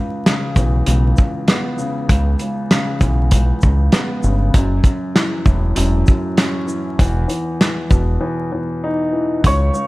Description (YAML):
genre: hip hop, boom-bap hip-hop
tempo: 98 BPM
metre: 4/4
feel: swing 56% on 16ths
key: C# minor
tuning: A4 = 440 Hz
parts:
  - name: dark grand piano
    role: accompaniment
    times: 0.0-9.9 s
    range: C#2 to D#4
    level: -21 LUFS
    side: left 1 dB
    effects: high-pass filter, low-pass filter
  - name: warm soul drum kit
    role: drums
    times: 0.3-9.9 s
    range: hi-hat, kick drum, shaker, snare drum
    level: -15 LUFS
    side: equal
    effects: none
  - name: deep dub fingered electric bass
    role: bass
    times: 0.6-9.7 s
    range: E1 to C#2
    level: -16 LUFS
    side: equal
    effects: none
  - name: clear upright piano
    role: melody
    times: 9.5-9.9 s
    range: C#5 to C#6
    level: -19 LUFS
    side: equal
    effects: high-pass filter, low-pass filter, slapback echo
room: light reverb, small room ambience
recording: vinyl crackle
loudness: -14 LUFS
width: side -20 dB against mid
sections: 0.0-9.4 A section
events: break 8.2-9.4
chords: 0.0 C#m7; 4.5 F#m7; 7.0 E5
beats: 0.26 0.87 1.48 | 2.09 2.71 3.32 3.93 | 4.54 5.15 5.77 6.38 | 6.99 7.60 8.21 8.83 | 9.44